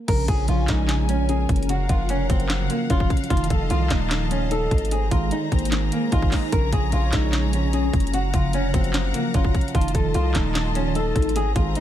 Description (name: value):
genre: hip hop, trap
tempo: 149 BPM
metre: 4/4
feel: half-time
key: Bb minor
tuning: A4 = 440 Hz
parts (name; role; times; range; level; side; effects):
- soft electric-piano-like synth keys; accompaniment; 0.0-11.8 s; Db3 to Eb4; -27 LUFS; equal; chorus, phaser, low-pass filter
- nylon-string guitar; melody; 0.1-11.8 s; Bb3 to Bb4; -27 LUFS; equal; low-pass filter, ping-pong delay
- warm symphonic string section; sustained chords; 0.1-11.8 s; Db4 to Bb5; -32 LUFS; left 4 dB; none
- distorted 808-style bass; bass; 0.1-11.8 s; Eb1 to C2; -24 LUFS; equal; distortion
- trap drum kit; drums; 0.1-11.8 s; crash cymbal, handclaps, hi-hat, kick drum, snare drum; -23 LUFS; equal; none
room: little or no reverb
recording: none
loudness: -19 LUFS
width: side -11 dB against mid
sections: 0.1-11.8 A section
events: none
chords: 0.1 Bbm7; 1.7 Gbmaj7; 3.3 F7; 4.9 Abadd9; 6.5 Bbm7; 8.1 Gbmaj7; 9.7 F7